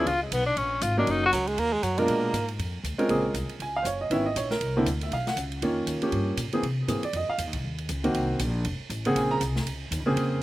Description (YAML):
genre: jazz, small-group swing and bop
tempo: 238 BPM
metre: 4/4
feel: swing 59% on 8ths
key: Bb minor from 3.1 s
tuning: A4 = 440 Hz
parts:
  - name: clear tenor saxophone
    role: melody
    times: 0.0-1.3 s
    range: Ab3 to Gb4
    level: -25 LUFS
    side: left 2 dB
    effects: none
  - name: clear upright piano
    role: accompaniment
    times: 0.0-10.4 s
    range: Cb3 to Bb5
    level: -26 LUFS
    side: right 1 dB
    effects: slapback echo
  - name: upright bass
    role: bass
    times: 0.0-10.4 s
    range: F1 to C3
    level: -31 LUFS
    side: equal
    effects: none
  - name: open jazz drum kit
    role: drums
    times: 0.1-10.2 s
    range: hi-hat, kick drum, ride cymbal, snare drum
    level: -36 LUFS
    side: right 2 dB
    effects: none
  - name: clear baritone saxophone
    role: second line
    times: 1.3-2.5 s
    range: Gb3 to Bb3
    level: -27 LUFS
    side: right 2 dB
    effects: slapback echo
room: little or no reverb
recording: recorded outdoors, with no room sound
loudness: -24 LUFS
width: side -16 dB against mid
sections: 0.0-3.1 A section; 3.1-10.4 B section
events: none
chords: 0.1 Db5; 1.1 Gb6; 2.1 Bb7b9; 3.1 Bbm9; 4.1 Dbm9; 4.6 C9; 5.1 Bmaj9#11; 6.1 Gm7b5; 6.6 C7b13; 7.1 F5; 8.1 Cm7b5; 8.7 F; 9.2 Bbm9